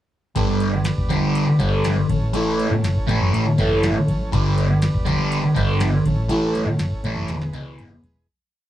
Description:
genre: psychedelic rock.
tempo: 121 BPM.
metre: 4/4.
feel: straight.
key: A mixolydian.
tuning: A4 = 441 Hz.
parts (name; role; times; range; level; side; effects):
combo organ; sustained chords; 0.4-8.3 s; E3 to D5; -33 LUFS; right 2 dB; none.
thick fuzz guitar; riff; 0.4-7.9 s; E2 to A3; -20 LUFS; equal; distortion, phaser.
hollow-body short-scale fingered electric bass; bass; 0.4-8.2 s; E1 to A2; -23 LUFS; equal; none.
booming analog drum machine; drums; 0.4-8.3 s; kick drum, ride cymbal, snare drum, toms; -27 LUFS; equal; none.
congas; percussion; 0.7-8.3 s; none; -35 LUFS; equal; none.
room: wet booth ambience, RT60 0.2 s.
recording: rough rehearsal-room recording, tube saturation.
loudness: -18 LUFS.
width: side -12 dB against mid.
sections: 0.4-8.3 groove.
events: fade-out 6.3-8.3; drum fill 7.3-8.3.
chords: 0.4 G; 2.1 A; 4.3 G; 6.1 A; 7.3 E.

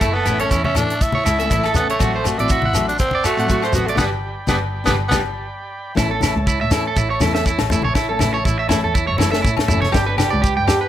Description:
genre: highlife guitar band.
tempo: 121 BPM.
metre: 4/4.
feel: swing 54% on 16ths.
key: A mixolydian.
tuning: A4 = 441 Hz.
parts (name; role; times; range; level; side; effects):
growling tenor saxophone; melody; 0.0-5.1 s; A3 to E4; -21 LUFS; equal; none.
overdriven combo organ; sustained chords; 0.0-10.9 s; B4 to C#6; -30 LUFS; right 3 dB; plate reverb.
electric guitar at the edge of break-up; arpeggios; 0.0-10.9 s; E4 to G5; -22 LUFS; right 5 dB; plate reverb, analog delay.
dark double bass; bass; 0.0-10.9 s; F#1 to A2; -24 LUFS; equal; none.
tight funk drum kit; drums; 0.0-10.8 s; hi-hat, kick drum, rim click, snare drum; -22 LUFS; equal; none.
agogo bells; percussion; 0.0-10.8 s; none; -28 LUFS; left 16 dB; none.
shekere; percussion; 0.0-10.8 s; none; -24 LUFS; right 2 dB; none.
nylon-string guitar; accompaniment; 0.3-10.8 s; E3 to A4; -26 LUFS; left 5 dB; none.
congas; percussion; 0.6-10.8 s; none; -25 LUFS; left 2 dB; none.
room: light reverb.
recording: none.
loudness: -16 LUFS.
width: side -11 dB against mid.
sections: 0.0-6.0 A section; 6.0-10.9 B section.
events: band accent 4.0-6.0.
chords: 0.0 A; 2.0 D7/A; 4.0 G; 6.0 A; 9.9 G.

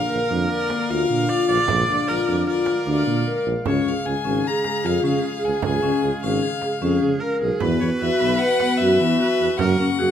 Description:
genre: contemporary instrumental, chamber music in an uneven meter.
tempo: 152 BPM.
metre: 5/4.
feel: straight.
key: unclear.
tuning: A4 = 443 Hz.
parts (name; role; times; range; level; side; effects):
rich violin; melody; 0.0-10.1 s; B4 to A#5; -27 LUFS; left 6 dB; none.
bright viola; second line; 0.0-10.1 s; G#4 to D5; -26 LUFS; right 3 dB; none.
mellow woodwind section; sustained chords; 0.0-10.1 s; C#3 to E#5; -31 LUFS; right 3 dB; none.
vibraphone with medium hard mallets; arpeggios; 0.1-10.1 s; G#3 to B4; -22 LUFS; left 3 dB; none.
mellow tuba; bass; 0.1-10.1 s; G#1 to E3; -25 LUFS; right 4 dB; none.
frame drum; percussion; 0.7-10.1 s; none; -31 LUFS; right 7 dB; none.
room: moderate recital hall reverb, RT60 1.4 s.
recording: minimal, uncompressed stereo recording.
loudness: -18 LUFS.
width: side -9 dB against mid.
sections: 0.0-10.1 A section.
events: none.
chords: 0.0 A#; 3.7 C#; 7.6 Esus2; 9.6 F#.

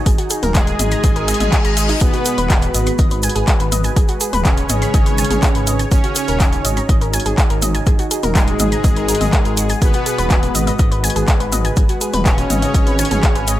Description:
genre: melodic techno.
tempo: 123 BPM.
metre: 4/4.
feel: straight.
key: G# minor.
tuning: A4 = 441 Hz.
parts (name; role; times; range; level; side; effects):
dark analog pad; sustained chords; 0.0-13.6 s; G#3 to D#5; -26 LUFS; equal; chorus, sidechain pumping.
analog pluck; arpeggios; 0.0-13.5 s; D#4 to B5; -24 LUFS; equal; chorus, sidechain pumping, digital delay.
swelling detuned saw bass; bass; 0.1-13.6 s; D#1 to G#1; -20 LUFS; equal; sidechain pumping.
deep house drum kit; drums; 0.1-13.6 s; handclaps, hi-hat, toms; -22 LUFS; equal; none.
electronic kick drum; drums; 0.1-13.3 s; none; -15 LUFS; equal; none.
tube shaker; percussion; 0.1-13.6 s; none; -26 LUFS; right 2 dB; none.
analog synth brass; melody; 0.5-13.6 s; G#2 to G#4; -23 LUFS; equal; chorus, vintage 12-bit sampler grit, sidechain pumping, tape echo.
soft supersaw; second line; 0.5-13.6 s; G#4 to G#5; -28 LUFS; equal; cassette tape, sidechain pumping, digital delay.
reverse cymbal; sound effects; 1.2-2.0 s; none; -26 LUFS; left 4 dB; none.
room: little or no reverb.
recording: none.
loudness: -13 LUFS.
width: side -14 dB against mid.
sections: 0.0-13.6 A section.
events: reverse cymbal 1.2-2.0.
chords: 0.0 D#m; 2.0 G#m7; 5.9 D#m7; 9.8 G#m7.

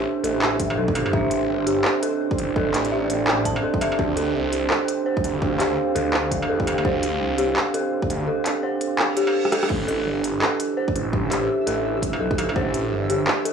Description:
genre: half-time drum and bass.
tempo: 168 BPM.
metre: 4/4.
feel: swing 60% on 16ths, half-time.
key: A minor.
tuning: A4 = 442 Hz.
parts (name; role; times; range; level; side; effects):
dark analog pad; sustained chords; 0.0-13.5 s; D4 to F5; -26 LUFS; right 4 dB; chorus, sidechain pumping, cassette tape.
dark detuned synth bell; arpeggios; 0.0-13.5 s; G4 to A5; -25 LUFS; left 2 dB; chorus, vintage 12-bit sampler grit, cassette tape, analog delay.
phased detuned saw bass; bass; 0.0-13.3 s; G1 to E2; -27 LUFS; equal; phaser.
pulsing gated texture; texture; 0.0-13.5 s; E3 to E6; -32 LUFS; right 3 dB; chorus, built-in reverb, cassette tape.
industrial drum kit; drums; 0.2-13.5 s; crash cymbal, handclaps, hi-hat, rim click, struck metal; -25 LUFS; equal; studio reverb, cassette tape.
electronic kick drum; drums; 0.6-12.6 s; none; -27 LUFS; equal; studio reverb, cassette tape.
reverse cymbal; sound effects; 9.1-9.7 s; none; -32 LUFS; right 4 dB; none.
room: light reverb.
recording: home recording on cassette, studio ambience.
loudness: -20 LUFS.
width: side -6 dB against mid.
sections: 0.0-13.5 A section.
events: reverse cymbal 9.1-9.7; drum fill 9.4.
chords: 0.0 Am; 4.0 Dm; 9.7 Am.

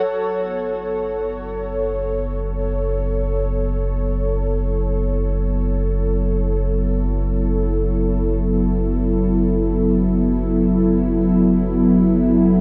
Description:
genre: ambient.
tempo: free time.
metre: none.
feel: none.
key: F# minor.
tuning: A4 = 440 Hz.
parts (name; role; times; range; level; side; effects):
warm analog pad; sustained chords; 0.0-12.6 s; F#3 to C#5; -21 LUFS; equal; chorus.
warm sub bass; bass; 0.0-12.6 s; F#1; -25 LUFS; equal; none.
room: wet huge ambient reverb, RT60 8.1 s.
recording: worn, warbling old tape, cassette tape, warbly pitch drift, nothing above 7.6 kHz.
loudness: -20 LUFS.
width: mono.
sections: 0.0-12.6 A section.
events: filter sweep on analog synth pad 0.0-12.6.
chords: 0.0 F#m7.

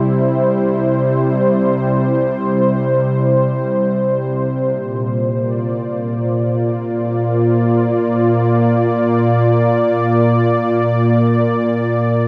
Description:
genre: ambient.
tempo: free time.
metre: none.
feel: none.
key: Bb lydian.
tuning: A4 = 441 Hz.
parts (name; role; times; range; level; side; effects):
warm analog pad; solo; 0.0-12.3 s; Bb2 to D5; -16 LUFS; equal; chorus, diffuse ambient delay.
room: wet huge ambient reverb, RT60 7.5 s.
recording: dark, warm production.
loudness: -16 LUFS.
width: mono.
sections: 0.0-12.3 A section.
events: none.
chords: 0.0 C; 4.7 Bb.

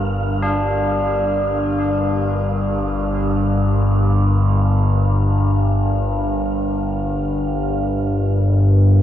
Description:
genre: dark ambient drone.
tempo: free time.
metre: none.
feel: none.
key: G minor.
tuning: A4 = 440 Hz.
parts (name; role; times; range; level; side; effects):
sweeping resonant pad; sustained chords; 0.0-9.0 s; G3 to Bb4; -28 LUFS; equal; chorus, shimmer reverb.
overtone-sweeping drone; drone; 0.0-9.0 s; G1 to G2; -17 LUFS; equal; chorus, built-in reverb, phaser.
wind-like tuned noise texture; texture; 0.0-7.7 s; F5; -32 LUFS; right 4 dB; built-in reverb, shimmer reverb.
tubular bells; arpeggios; 0.4-7.7 s; D4; -25 LUFS; left 1 dB; diffuse ambient delay, shimmer reverb.
room: moderate huge ambient reverb, RT60 7.9 s.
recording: dark, warm production.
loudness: -16 LUFS.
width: side -11 dB against mid.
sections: 0.0-7.7 A section; 7.7-9.0 B section.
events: fade-out on analog synth pad 0.0-7.7.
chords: 0.0 Gm.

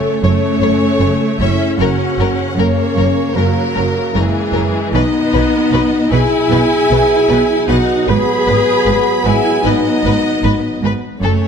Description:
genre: cinematic, epic orchestral film score.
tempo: 77 BPM.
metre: 4/4.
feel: straight.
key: unclear.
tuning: A4 = 438 Hz.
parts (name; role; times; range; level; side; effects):
warm studio violin section; second line; 0.0-11.5 s; G#4 to B5; -21 LUFS; left 2 dB; none.
warm symphonic viola section; accompaniment; 0.0-11.5 s; E3 to G#4; -19 LUFS; left 1 dB; none.
dark French horn section; sustained chords; 0.0-11.5 s; G#3 to B4; -17 LUFS; left 2 dB; none.
mellow trombone section; sustained chords; 0.0-11.5 s; C#3 to B3; -23 LUFS; right 4 dB; none.
warm symphonic violin section; melody; 0.2-11.3 s; A4 to C#5; -23 LUFS; left 6 dB; none.
rich symphonic double bass section; bass; 0.2-11.3 s; F#1 to B1; -20 LUFS; right 3 dB; none.
warm symphonic cello section; bass; 0.2-11.3 s; F#2 to B2; -20 LUFS; right 3 dB; none.
room: moderate scoring stage reverb, RT60 1.7 s.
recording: none.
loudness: -12 LUFS.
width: side -7 dB against mid.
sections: 0.0-11.5 A section.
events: none.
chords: 0.0 F#m; 1.8 F#; 4.9 B6; 8.1 G#m.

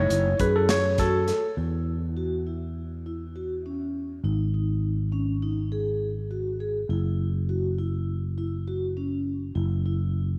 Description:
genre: progressive instrumental, band music in an uneven meter.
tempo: 203 BPM (eighths).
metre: 9/8.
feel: straight.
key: F# dorian.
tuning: A4 = 442 Hz.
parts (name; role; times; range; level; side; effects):
overdriven tine electric piano; accompaniment; 0.0-1.5 s; A4 to C#5; -28 LUFS; equal; none.
sustaining fretless electric bass; bass; 0.0-10.4 s; F#1 to F#2; -30 LUFS; equal; none.
vibraphone with soft mallets; arpeggios; 0.1-10.2 s; C#4 to A4; -33 LUFS; equal; none.
modern studio drum kit; drums; 0.1-1.4 s; hi-hat, kick drum, snare drum; -32 LUFS; equal; none.
room: moderate echo chamber reverb, RT60 2.1 s.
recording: none.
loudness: -27 LUFS.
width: mono.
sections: 0.0-1.6 A section; 1.6-10.4 B section.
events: tine electric piano solo 0.0-1.6.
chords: 0.0 F#m; 1.6 Esus2; 4.2 G#5; 6.9 F#5.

